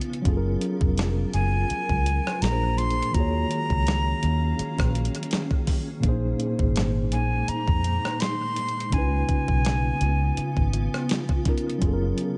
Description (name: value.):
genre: contemporary R&B.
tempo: 83 BPM.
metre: 4/4.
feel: swing 54% on 16ths.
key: Eb minor.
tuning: A4 = 440 Hz.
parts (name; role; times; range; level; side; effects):
mellow tine electric piano; accompaniment; 0.0-12.4 s; Bb2 to Db5; -31 LUFS; equal; analog delay.
granular cloud pad; sustained chords; 0.0-12.4 s; Db3 to F5; -37 LUFS; equal; built-in reverb.
crisp 8-bit digital drum machine; drums; 0.0-12.4 s; hi-hat, kick drum, rim click, snare drum; -29 LUFS; equal; none.
vintage muted fingered electric bass; bass; 0.3-12.1 s; F1 to F2; -27 LUFS; equal; none.
breathy bright concert flute; melody; 1.3-11.1 s; Ab5 to C6; -32 LUFS; equal; analog delay.
room: digital ambience.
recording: echo-heavy mix, nothing above 10.4 kHz.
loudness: -25 LUFS.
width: mono.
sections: 0.0-12.4 A section.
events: none.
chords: 0.3 Gbmaj7; 2.4 Bb7; 3.1 Ebm11; 6.0 Bb9sus4; 8.9 Db7; 11.8 Gbmaj7.